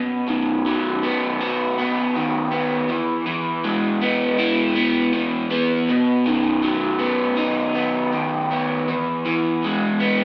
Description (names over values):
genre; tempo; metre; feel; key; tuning
rock; 80 BPM; 4/4; straight; E major; A4 = 440 Hz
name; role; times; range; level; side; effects
crunchy overdriven guitar; solo; 0.0-10.2 s; B2 to F#4; -18 LUFS; equal; phaser
room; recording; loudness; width
wet large studio reverb, RT60 1.3 s; band playing live in one room, AM radio sound; -18 LUFS; side -30 dB against mid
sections
0.0-10.2 A section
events
none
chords
0.0 B; 2.9 E; 5.9 B; 8.9 E